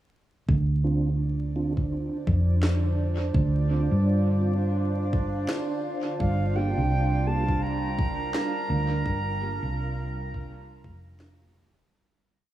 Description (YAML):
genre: ambient dub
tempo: 84 BPM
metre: 4/4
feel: swing 60% on 16ths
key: G minor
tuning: A4 = 440 Hz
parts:
  - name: warbly tape-like pad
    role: sustained chords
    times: 1.2-11.9 s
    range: D3 to F5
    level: -34 LUFS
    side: equal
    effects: chorus, built-in reverb, vintage 12-bit sampler grit
  - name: hollow-body short-scale fingered electric bass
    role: bass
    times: 0.5-11.7 s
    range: F1 to G2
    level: -25 LUFS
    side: right 1 dB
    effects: none
  - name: electronic kick drum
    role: drums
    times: 0.5-11.0 s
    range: none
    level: -28 LUFS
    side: equal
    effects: none
  - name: bubbling stepped-filter texture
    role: texture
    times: 1.0-11.9 s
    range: D4 to D5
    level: -36 LUFS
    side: right 3 dB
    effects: chorus, built-in reverb
  - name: mellow tonewheel organ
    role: stabs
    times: 0.8-11.7 s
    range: Bb3 to G4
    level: -36 LUFS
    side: right 1 dB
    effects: chorus vibrato, stopped rotary speaker, dub echo
  - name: electronic snare drum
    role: drums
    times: 2.6-11.4 s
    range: none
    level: -33 LUFS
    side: equal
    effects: dub echo
  - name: reedy silver concert flute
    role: melody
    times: 6.2-11.2 s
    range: F5 to Bb5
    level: -32 LUFS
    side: right 2 dB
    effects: dub echo
room: light reverb, digital ambience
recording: vinyl crackle, small room ambience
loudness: -23 LUFS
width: side -13 dB against mid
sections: 0.5-11.9 groove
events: fade-out 8.1-11.9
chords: 0.5 Dm7; 6.2 Gm7